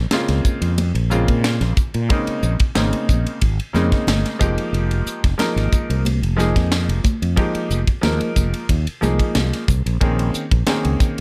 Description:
electric jazz fusion; 91 BPM; 4/4; straight; Bb dorian; A4 = 440 Hz
fretless electric bass; bass; 0.0-11.0 s; F1 to Bb2; -22 LUFS; equal
bright grand piano; accompaniment; 0.1-11.2 s; Db3 to Bb4; -25 LUFS; equal
crisp fusion drum kit; drums; 0.1-11.2 s; hi-hat, kick drum, ride cymbal, snare drum; -23 LUFS; equal
congas; percussion; 0.1-10.8 s; -29 LUFS; equal
light reverb; -19 LUFS; mono
0.0-11.2 A section
0.0 Bbm11; 4.4 Fm11; 10.0 Bbm11
0.12 0.78 1.44 | 2.10 2.75 3.42 4.08 | 4.74 5.39 6.05 6.71 | 7.37 8.03 8.69 9.35 | 10.01 10.67

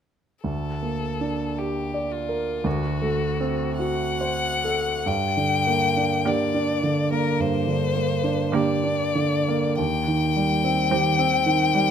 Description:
classical, slow romantic movement for piano quartet; 45-57 BPM; 4/4; rubato; G minor; A4 = 440 Hz
clear baby grand piano; accompaniment; 0.4-11.9 s; D2 to D5; -23 LUFS; right 2 dB
clear violin; melody; 0.5-11.9 s; F4 to G5; -25 LUFS; left 6 dB
rich cello; second line; 6.3-11.8 s; D3 to Eb3; -30 LUFS; right 9 dB
warm viola; accompaniment; 6.3-11.8 s; Bb3 to C4; -31 LUFS; right 4 dB
moderate scoring stage reverb, RT60 1.7 s; close, detailed microphones; -21 LUFS; side -8 dB against mid
0.5-5.1 A section; 5.1-11.9 B section
0.5 Gm/D; 2.7 D7; 5.1 Gm; 9.8 Cm/Eb
| 0.46 1.59 2.65 3.79 | 5.07 6.26 7.40 8.54 | 9.79 10.92

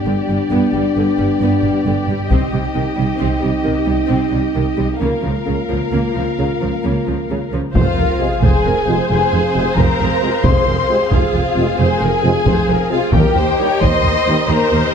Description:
cinematic, epic orchestral film score; 89 BPM (dotted quarters); 12/8; straight; F minor; A4 = 440 Hz
warm symphonic violin section; melody; 0.0-14.9 s; D5 to C6; -25 LUFS; left 6 dB
warm symphonic violin section; second line; 0.0-14.9 s; F4 to C5; -23 LUFS; left 3 dB
dark French horn section; sustained chords; 0.0-14.4 s; Bb3 to F4; -22 LUFS; left 2 dB
warm symphonic viola section; accompaniment; 0.1-14.9 s; Db3 to Eb5; -22 LUFS; right 2 dB
rich symphonic cello section; bass; 0.1-14.8 s; Eb2 to Db3; -22 LUFS; right 2 dB
warm symphonic double bass section; bass; 0.1-14.8 s; F1 to Eb2; -21 LUFS; right 3 dB
taiko ensemble; drums; 2.3-3.2, 7.8-14.2 s; -19 LUFS; left 1 dB
rich symphonic string section; sustained chords; 7.7-14.9 s; C4 to F5; -25 LUFS; right 1 dB
dark trumpet section; stabs; 7.7-14.9 s; F4 to C5; -22 LUFS; equal
warm tuba; bass; 7.8-14.8 s; F1 to Eb2; -24 LUFS; right 2 dB
sub drop; sound effects; 7.8-10.4 s; -25 LUFS; left 1 dB
dark trombone section; sustained chords; 8.2-14.3 s; C3 to Ab3; -27 LUFS; right 3 dB
moderate recital hall reverb, RT60 1.5 s; dark, warm production; -14 LUFS; side -7 dB against mid
0.0-7.8 A section; 7.8-14.9 B section
build-up 0.0-7.8; impact 7.8-10.4
0.0 G; 2.3 Cm; 5.0 Bbm/Db; 7.8 Fm; 13.1 Eb
0.28 0.95 1.62 | 2.30 2.97 3.64 4.32 | 5.00 5.69 6.38 7.07 | 7.75 8.43 9.10 9.77 | 10.44 11.12 11.79 12.46 | 13.13 13.82 14.49

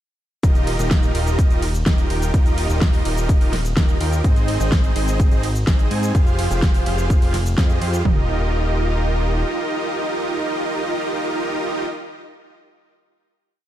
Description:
EDM, festival progressive house; 126 BPM; 4/4; straight; Eb major; A4 = 441 Hz
supersaw chords; riff; 0.4-11.8 s; C4 to Ab5; -23 LUFS; right 1 dB; sidechain pumping, digital delay
fat analog bass; bass; 0.4-9.4 s; Eb1 to Ab2; -21 LUFS; equal; sidechain pumping
big-room dance drum kit; drums; 0.4-8.0 s; hi-hat, ride cymbal, shaker, snare drum; -27 LUFS; equal; overdrive, small room ambience
house drum kit; drums; 0.4-8.2 s; kick drum, toms; -16 LUFS; equal; small room ambience
little or no reverb; dark, warm production; -17 LUFS; side -12 dB against mid
0.4-8.1 drop; 8.1-11.9 final chord
drop 0.4-8.1
0.4 Ebadd9; 4.2 Ab; 6.1 Fmadd9; 8.1 Ebadd9
| 0.43 0.91 1.39 1.86 | 2.34 2.81 3.29 3.77 | 4.24 4.72 5.20 5.67 | 6.15 6.62 7.10 7.58 | 8.05 8.53 9.01 9.48 | 9.96 10.43 10.91 11.39

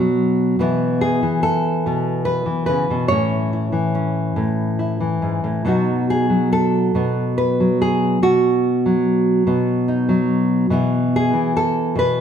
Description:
folk, solo fingerstyle acoustic guitar; 48 BPM (dotted quarters); 6/8; rubato; B mixolydian; A4 = 440 Hz
nylon-string guitar; solo; 0.0-12.2 s; G#2 to C#5; -16 LUFS; equal
moderate large studio reverb, RT60 1.3 s; -16 LUFS; side -8 dB against mid
0.0-12.2 A section
0.0 B5; 0.6 E5/B; 3.1 A; 5.6 B; 10.7 E5/B
| 0.60 1.84 | 3.09 4.36 | 5.65 6.93 | 8.20 9.46 | 10.70 11.96

